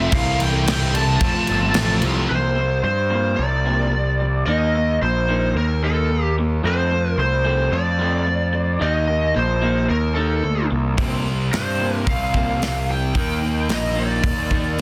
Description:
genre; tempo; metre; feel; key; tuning
quiet-loud alternative rock; 110 BPM; 4/4; straight; unclear; A4 = 440 Hz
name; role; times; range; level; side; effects
lead guitar through a small cranked amp; melody; 0.0-14.8 s; A4 to A5; -25 LUFS; equal; overdrive, digital delay
thick fuzz guitar; riff; 0.0-2.3 s; C3 to F4; -28 LUFS; equal; distortion
thick fuzz guitar; riff; 0.0-2.3, 11.0-14.8 s; C3 to F4; -30 LUFS; equal; distortion
thick fuzz guitar; riff; 0.0-2.3 s; C3 to F4; -29 LUFS; equal; distortion
fuzz picked electric bass; bass; 0.0-14.8 s; G1 to G2; -24 LUFS; equal; overdrive
big rock drum kit; drums; 0.1-2.1, 11.0-14.8 s; crash cymbal, hi-hat, kick drum, snare drum; -26 LUFS; equal; none
electric guitar through a small old amp; arpeggios; 2.3-14.8 s; C3 to Eb4; -28 LUFS; equal; none
room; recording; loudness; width
light reverb, studio reverb; dense, heavily limited modern master; -20 LUFS; mono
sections
0.0-2.3 A section; 2.3-14.8 B section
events
none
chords
0.1 C; 1.2 F; 2.3 C7sus4; 4.5 Eb5; 6.6 F; 8.8 Eb5; 11.0 C7sus4; 13.2 Eb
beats
| 0.12 0.66 1.20 1.75 | 2.29 2.83 3.37 3.92 | 4.46 5.00 5.55 6.09 | 6.64 7.18 7.72 8.27 | 8.81 9.35 9.90 10.44 | 10.98 11.53 12.07 12.61 | 13.15 13.70 14.24 14.78

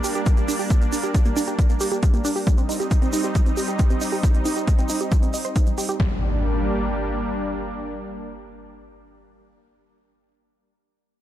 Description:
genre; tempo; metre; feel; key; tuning
uplifting trance; 136 BPM; 4/4; straight; G minor; A4 = 441 Hz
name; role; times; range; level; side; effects
lush unison pad; sustained chords; 0.0-9.1 s; G3 to Eb4; -27 LUFS; right 1 dB; chorus, sidechain pumping
wide unison pluck; arpeggios; 0.0-6.2 s; G3 to Eb5; -27 LUFS; right 2 dB; sidechain pumping, ping-pong delay
electronic hi-hat; drums; 0.0-6.0 s; none; -34 LUFS; right 4 dB; sidechain pumping on hats, sidechain pumping on perc
egg shaker; percussion; 0.0-6.0 s; none; -34 LUFS; right 2 dB; none
electronic kick drum; drums; 0.3-6.1 s; none; -19 LUFS; equal; overdrive
impact; sound effects; 6.0-9.1 s; none; -27 LUFS; equal; none
room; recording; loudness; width
light reverb, digital ambience; dark, warm production; -19 LUFS; side -12 dB against mid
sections
0.0-6.0 A section; 6.0-9.5 B section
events
filter sweep on synth arpeggio sound 0.0-6.0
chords
0.0 Gm; 2.5 Cm; 6.0 Gm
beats
0.26 | 0.70 1.15 1.59 2.03 | 2.47 2.91 3.35 3.79 | 4.23 4.67 5.12 5.56 | 6.00 6.44 6.88 7.32 | 7.76 8.20 8.65 9.09

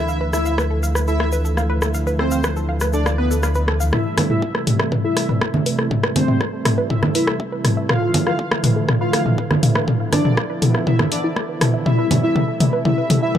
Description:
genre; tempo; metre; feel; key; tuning
melodic techno; 121 BPM; 4/4; straight; A minor; A4 = 440 Hz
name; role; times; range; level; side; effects
wide unison lead; melody; 0.0-13.4 s; B3 to F4; -25 LUFS; left 1 dB; analog chorus, digital delay
soft supersaw; second line; 0.0-13.4 s; B4 to F5; -31 LUFS; right 1 dB; sidechain pumping, low-pass filter, digital delay
warm analog pad; sustained chords; 0.0-13.4 s; C3 to E4; -25 LUFS; right 2 dB; chorus, sidechain pumping
wide unison pluck; arpeggios; 0.0-13.4 s; E4 to A5; -28 LUFS; right 1 dB; sidechain pumping, digital delay
dark detuned saw bass; bass; 0.0-3.9 s; D2; -20 LUFS; equal; sidechain pumping
tube shaker; percussion; 0.1-3.9 s; none; -34 LUFS; left 1 dB; none
deep house drum kit; drums; 0.3-13.4 s; congas, hi-hat, rim click, toms; -18 LUFS; equal; none
electronic kick drum; drums; 3.9-13.4 s; none; -30 LUFS; equal; high-pass filter on kick, high-pass filter on room
room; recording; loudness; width
light reverb, digital ambience; dark, warm production; -16 LUFS; side -10 dB against mid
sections
0.0-3.9 A section; 3.9-13.4 B section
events
build-up 3.9-13.4; drum fill 3.9-13.4; filter sweep on synth pluck 3.9-13.4; filter sweep on analog synth lead 3.9-13.4; filter sweep on supersaw synth 3.9-13.4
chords
0.0 Dmadd9; 3.9 Am7; 7.9 Dmadd9; 11.9 Am7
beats
0.46 0.95 1.45 | 1.94 2.44 2.94 3.43 | 3.93 4.42 4.92 5.42 | 5.91 6.41 6.90 7.40 | 7.89 8.39 8.89 9.38 | 9.88 10.37 10.87 11.37 | 11.86 12.36 12.85 13.35

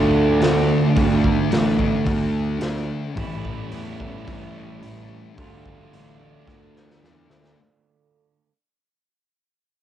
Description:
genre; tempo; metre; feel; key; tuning
rock, shoegaze and dream pop; 109 BPM; 4/4; straight; D minor; A4 = 442 Hz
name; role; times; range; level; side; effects
overdriven electric guitar; riff; 0.0-7.6 s; A2 to F4; -23 LUFS; right 7 dB; reverse reverb, cassette tape
thick fuzz guitar; riff; 0.0-7.6 s; A2 to D4; -24 LUFS; left 6 dB; distortion, wide subtle chorus, cassette tape
fuzz picked electric bass; bass; 0.0-7.5 s; A1 to E2; -28 LUFS; equal; overdrive
raw garage drum kit; drums; 0.4-7.6 s; hi-hat, kick drum, snare drum; -26 LUFS; equal; cassette tape
room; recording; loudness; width
light reverb, small room ambience; home recording on cassette; -18 LUFS; side -10 dB against mid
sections
0.0-7.6 A section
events
fade-out 0.0-7.6; drum fill 6.5-7.6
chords
0.0 Dm; 3.2 A7; 5.4 Dm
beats
0.42 | 0.97 1.52 2.07 2.62 | 3.17 3.72 4.27 4.82 | 5.36 5.91 6.46 7.01

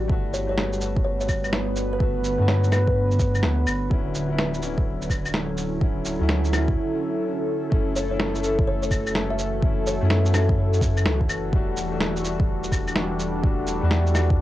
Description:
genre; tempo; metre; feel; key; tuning
future garage; 126 BPM; 4/4; swing 65% on 16ths; F# phrygian; A4 = 440 Hz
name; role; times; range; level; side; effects
clear upright piano; accompaniment; 0.0-14.4 s; F#3 to F#4; -33 LUFS; left 7 dB; vintage 12-bit sampler grit, sidechain pumping, cassette tape, tape echo
warbly tape-like pad; sustained chords; 0.0-14.4 s; D3 to B4; -27 LUFS; equal; chorus, built-in reverb, phaser, sidechain pumping, cassette tape
soft dub sub bass; bass; 0.0-14.4 s; D1 to G2; -25 LUFS; equal; sidechain pumping
electronic kick drum; drums; 0.1-14.4 s; none; -23 LUFS; equal; cassette tape
kalimba; melody; 0.3-2.9, 8.0-10.5 s; B4 to E5; -31 LUFS; equal; cassette tape, tape echo
electronic shaker, snare drum and claves; drums; 0.3-14.3 s; none; -27 LUFS; equal; cassette tape
room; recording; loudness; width
light reverb; home recording on cassette; -21 LUFS; side -14 dB against mid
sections
0.0-7.7 A section; 7.7-14.4 B section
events
break 6.8-7.7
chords
0.1 Gmaj7; 3.9 Dmaj9; 7.7 F#m7; 11.5 Em11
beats
| 0.10 0.58 1.05 1.53 | 2.00 2.48 2.96 3.43 | 3.91 4.39 4.86 5.34 | 5.81 6.29 6.77 7.24 | 7.72 8.20 8.67 9.15 | 9.62 10.10 10.58 11.05 | 11.53 12.01 12.48 12.96 | 13.43 13.91 14.39

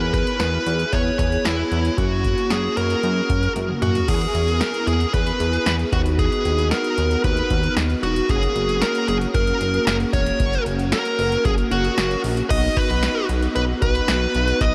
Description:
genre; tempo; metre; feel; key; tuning
synth-pop; 114 BPM; 4/4; straight; B major; A4 = 441 Hz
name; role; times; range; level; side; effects
dark smooth lead guitar; melody; 0.0-14.7 s; E4 to D#5; -24 LUFS; equal; overdrive, tape echo
mellow synth brass; accompaniment; 0.0-14.7 s; A#3 to G#4; -28 LUFS; equal; chorus
chorused synth bass; bass; 0.0-14.7 s; E1 to F#2; -26 LUFS; equal; none
electro analog drum machine; drums; 0.1-14.7 s; crash cymbal, hi-hat, kick drum, snare drum, toms; -27 LUFS; equal; none
room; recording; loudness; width
moderate huge ambient reverb, RT60 7.8 s; dreamy mix soaked in reverb; -20 LUFS; mono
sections
0.0-4.1 A section; 4.1-12.5 B section; 12.5-14.7 C section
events
drum fill 3.6-4.1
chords
0.0 E; 2.0 F#; 4.1 E; 5.9 B/D#; 8.3 F#; 12.5 B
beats
0.40 0.93 1.45 | 1.98 2.50 3.03 3.56 | 4.08 4.61 5.14 5.66 | 6.19 6.71 7.24 7.77 | 8.29 8.82 9.35 9.87 | 10.40 10.93 11.45 11.98 | 12.50 13.03 13.56 14.08 | 14.61

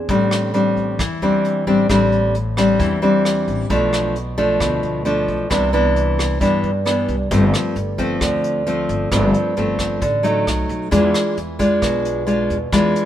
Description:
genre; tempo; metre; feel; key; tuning
bossa nova; 133 BPM; 4/4; straight; unclear; A4 = 438 Hz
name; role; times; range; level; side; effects
nylon-string guitar; accompaniment; 0.0-13.1 s; G2 to F4; -17 LUFS; equal; none
upright bass; bass; 0.0-12.9 s; G1 to G2; -23 LUFS; equal; none
vintage brush drum kit; drums; 0.1-13.1 s; hi-hat, kick drum, rim click; -26 LUFS; equal; none
room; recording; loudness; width
light reverb; minimal, uncompressed stereo recording; -16 LUFS; side -11 dB against mid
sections
0.0-7.3 A section; 7.3-13.1 B section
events
none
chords
0.1 Am7; 3.7 Bm7b5; 5.5 Cmaj9; 7.3 G9sus4; 10.5 B7; 10.9 E7b9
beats
| 0.09 0.54 0.99 1.44 | 1.89 2.34 2.79 3.25 | 3.70 4.15 4.60 5.05 | 5.50 5.95 6.41 6.86 | 7.31 7.76 8.21 8.66 | 9.11 9.56 10.02 10.47 | 10.92 11.37 11.82 12.28 | 12.73

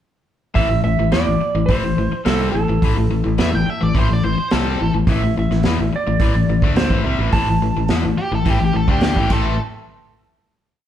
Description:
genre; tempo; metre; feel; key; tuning
classic rock; 106 BPM; 4/4; straight; A minor; A4 = 441 Hz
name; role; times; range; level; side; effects
cranked stack guitar; riff; 0.5-9.5 s; A2 to D4; -20 LUFS; left 4 dB; overdrive
clean lap steel guitar; melody; 0.6-9.6 s; A4 to C6; -24 LUFS; right 5 dB; none
fingered electric bass; bass; 0.6-9.6 s; A1 to E2; -21 LUFS; right 1 dB; none
vintage drum kit; drums; 0.6-9.4 s; crash cymbal, hi-hat, kick drum, snare drum; -20 LUFS; equal; none
octave-fuzz lead guitar; second line; 3.4-9.6 s; G4 to G5; -24 LUFS; right 1 dB; distortion
room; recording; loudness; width
light reverb; band playing live in one room; -15 LUFS; side -10 dB against mid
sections
0.6-9.6 verse; 9.6-10.9 final hit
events
none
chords
0.6 Am; 9.6 N.C.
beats
| 0.55 1.12 1.68 2.25 | 2.82 3.38 3.95 4.51 | 5.08 5.64 6.21 6.77 | 7.33 7.90 8.46 9.03

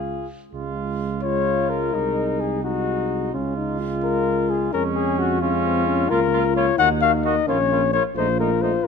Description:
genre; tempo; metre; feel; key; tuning
classical, brass quintet; 87 BPM (dotted quarters); 6/8; straight; Db major; A4 = 435 Hz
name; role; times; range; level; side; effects
dark cornet; melody; 0.0-8.9 s; F4 to Gb5; -22 LUFS; left 10 dB; none
mellow trumpet; second line; 0.0-8.7 s; Db4 to Ab4; -29 LUFS; right 8 dB; none
mellow French horn; accompaniment; 0.0-8.9 s; C4 to F4; -26 LUFS; left 4 dB; none
dark tuba; bass; 0.0-8.9 s; Bb1 to F2; -26 LUFS; right 6 dB; none
mellow trombone; accompaniment; 0.5-8.9 s; Ab3 to Bb3; -30 LUFS; right 5 dB; none
room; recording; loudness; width
light reverb; close, detailed microphones; -19 LUFS; side -6 dB against mid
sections
0.5-8.9 A section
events
none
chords
0.0 Db; 1.9 Ab7/C; 3.3 Db; 4.7 Db/F; 6.1 Bbm/Db; 6.8 Ebm; 7.5 Bbm; 8.2 F7/Bb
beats
| 0.54 1.24 | 1.94 2.64 | 3.34 4.03 | 4.72 5.41 | 6.10 6.78 | 7.47 8.16 | 8.85

